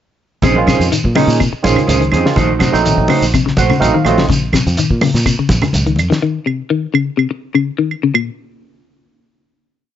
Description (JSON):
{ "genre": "afrobeat", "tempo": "124 BPM", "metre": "4/4", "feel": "straight", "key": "Bb minor", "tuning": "A4 = 440 Hz", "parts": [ { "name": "clean electric guitar", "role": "arpeggios", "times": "0.4-8.3 s", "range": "Bb2 to Eb3", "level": "-17 LUFS", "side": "left 6 dB", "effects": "phaser" }, { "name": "mellow electric guitar", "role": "stabs", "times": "0.4-4.2 s", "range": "A3 to C5", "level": "-17 LUFS", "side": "right 6 dB", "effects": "none" }, { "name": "fingered electric bass", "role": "bass", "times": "0.4-6.1 s", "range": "A1 to Bb2", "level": "-17 LUFS", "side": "equal", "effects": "none" }, { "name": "cloth-damped thuddy drum kit", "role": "drums", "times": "0.4-6.2 s", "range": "hi-hat, kick drum, snare drum", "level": "-19 LUFS", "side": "equal", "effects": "none" }, { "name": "congas", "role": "percussion", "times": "0.4-6.1 s", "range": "none", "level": "-20 LUFS", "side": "right 2 dB", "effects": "none" }, { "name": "shekere", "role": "percussion", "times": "0.4-6.2 s", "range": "none", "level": "-23 LUFS", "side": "right 1 dB", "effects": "none" }, { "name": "barky tine electric piano", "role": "accompaniment", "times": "0.6-4.3 s", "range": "Eb3 to Gb5", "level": "-17 LUFS", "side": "right 4 dB", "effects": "overdrive, wide subtle chorus" }, { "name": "claves", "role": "percussion", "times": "0.7-8.3 s", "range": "none", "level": "-19 LUFS", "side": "right 8 dB", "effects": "none" } ], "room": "light reverb", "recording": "nothing above 7.7 kHz", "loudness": "-12 LUFS", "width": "side -10 dB against mid", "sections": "0.4-8.1 groove; 8.1-10.0 final chord", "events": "tine electric piano fill 3.3-4.3", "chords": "0.4 Bbm11; 2.4 F7b9/Bb; 4.3 Bbm; 6.2 Cm; 8.1 N.C." }